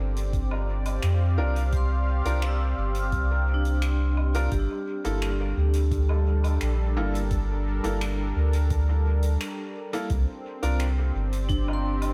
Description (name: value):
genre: ambient dub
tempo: 86 BPM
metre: 4/4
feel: straight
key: G dorian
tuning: A4 = 441 Hz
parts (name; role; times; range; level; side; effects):
- warm analog pad; sustained chords; 0.0-12.1 s; G3 to F5; -36 LUFS; equal; chorus, tremolo
- soft dub sub bass; bass; 0.0-12.1 s; G1 to F2; -26 LUFS; equal; none
- soft-mallet drum kit; drums; 0.2-12.1 s; finger snaps, hi-hat, woodblock; -42 LUFS; equal; studio reverb, dub echo
- electronic kick drum; drums; 0.3-11.6 s; none; -32 LUFS; equal; studio reverb
- clear upright piano; stabs; 1.4-10.8 s; Bb3 to Bb4; -38 LUFS; equal; dub echo
- vibraphone with hard mallets; arpeggios; 1.8-12.1 s; D4 to F6; -36 LUFS; equal; dub echo
room: little or no reverb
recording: none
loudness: -26 LUFS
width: mono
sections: 0.0-4.5 A section; 4.5-12.1 B section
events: none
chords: 0.0 Gm69; 4.5 Gmadd9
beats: 0.34 1.03 | 1.73 2.43 3.13 3.82 | 4.52 5.22 5.92 6.61 | 7.31 8.01 8.71 9.40 | 10.10 10.80 11.50